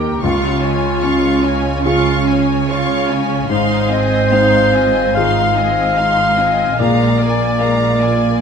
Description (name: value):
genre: cinematic, emotional film score for orchestra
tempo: 74 BPM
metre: 4/4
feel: rubato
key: unclear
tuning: A4 = 441 Hz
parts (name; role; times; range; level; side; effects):
- warm studio violin section; melody; 0.0-8.4 s; G5 to Db6; -25 LUFS; left 3 dB; none
- warm clarinet; second line; 0.0-8.4 s; Db4 to F5; -17 LUFS; left 1 dB; none
- warm studio violin section; second line; 0.0-8.4 s; Bb4 to F5; -24 LUFS; left 2 dB; none
- felt-muted upright piano; accompaniment; 0.0-8.4 s; Db2 to Ab4; -21 LUFS; left 3 dB; none
- rich studio viola section; accompaniment; 0.0-8.4 s; Ab3 to F4; -22 LUFS; right 3 dB; none
- concert harp; arpeggios; 0.0-8.4 s; Ab2 to Bb4; -25 LUFS; left 8 dB; none
- dark studio cello section; bass; 0.0-8.4 s; Ab2 to Eb3; -21 LUFS; right 5 dB; none
- warm studio double bass section; bass; 0.0-8.4 s; Ab1 to Eb2; -22 LUFS; right 6 dB; none
room: wet scoring stage reverb, RT60 1.8 s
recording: minimal, uncompressed stereo recording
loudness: -12 LUFS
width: side -6 dB against mid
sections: 0.0-8.4 A section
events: none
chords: 0.2 Db; 3.5 Ab6; 6.8 Bb7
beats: | 0.23 1.04 1.85 2.69 | 3.50 4.32 5.16 5.97 | 6.79 7.61